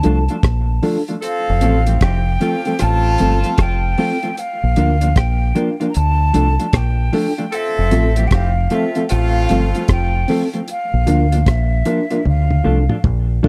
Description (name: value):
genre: roots reggae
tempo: 76 BPM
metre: 4/4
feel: swing 64% on 16ths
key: F major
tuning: A4 = 440 Hz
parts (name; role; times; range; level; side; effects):
- breathy mellow jazz flute; melody; 0.0-13.0 s; E5 to Bb5; -25 LUFS; equal; tape echo
- mellow electric guitar; accompaniment; 0.0-13.5 s; F3 to F4; -24 LUFS; equal; tape echo
- mellow reed electric piano; stabs; 0.0-13.5 s; C4 to Bb4; -22 LUFS; equal; fast tremolo
- damped 70s drum kit; drums; 0.0-13.5 s; hi-hat, kick drum, rim click, toms; -21 LUFS; equal; none
- deep dub fingered electric bass; bass; 0.1-13.4 s; F1 to D2; -18 LUFS; equal; none
- warm horn section; second line; 1.2-10.2 s; A3 to A4; -26 LUFS; equal; tape echo
room: little or no reverb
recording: dry, close 1970s-style studio recording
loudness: -17 LUFS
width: mono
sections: 0.0-13.5 A section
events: drum fill 12.2-13.5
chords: 0.0 Dm; 1.2 F; 4.4 Bb; 5.9 Dm; 7.5 F; 10.7 Bb; 12.2 Dm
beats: 0.43 | 1.22 2.01 2.80 3.58 | 4.37 5.16 5.95 6.73 | 7.52 8.31 9.10 9.88 | 10.67 11.46 12.25 13.03